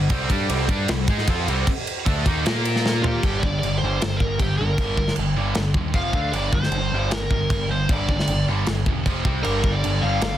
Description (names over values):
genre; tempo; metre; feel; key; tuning
hard rock; 154 BPM; 4/4; straight; G phrygian; A4 = 439 Hz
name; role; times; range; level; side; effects
high-gain distorted guitar; riff; 0.0-10.4 s; F2 to Bb4; -25 LUFS; equal; distortion
growling picked electric bass; bass; 0.0-10.4 s; E1 to Bb2; -25 LUFS; equal; overdrive
tight distorted guitar; riff; 0.1-3.2, 9.4-10.4 s; G2 to Bb4; -29 LUFS; equal; distortion
tight metal drum kit; drums; 0.1-10.3 s; crash cymbal, kick drum, ride cymbal, snare drum, toms; -24 LUFS; equal; none
biting lead guitar; melody; 3.0-10.4 s; G4 to F5; -26 LUFS; equal; overdrive
room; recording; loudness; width
light reverb, small room ambience; dense, heavily limited modern master; -19 LUFS; side -12 dB against mid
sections
0.0-3.2 A section; 3.2-10.4 B section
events
drum fill 2.8-3.2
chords
0.1 C5; 2.4 Bb5; 3.2 Gm; 6.0 F5; 6.1 D5; 6.3 Gm; 9.1 F5; 9.3 C5; 9.5 G5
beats
| 0.12 0.51 0.89 1.28 | 1.67 2.06 2.45 2.84 | 3.23 3.62 4.01 4.39 | 4.79 5.17 5.56 5.95 | 6.34 6.73 7.12 7.51 | 7.90 8.29 8.68 9.07 | 9.46 9.84 10.23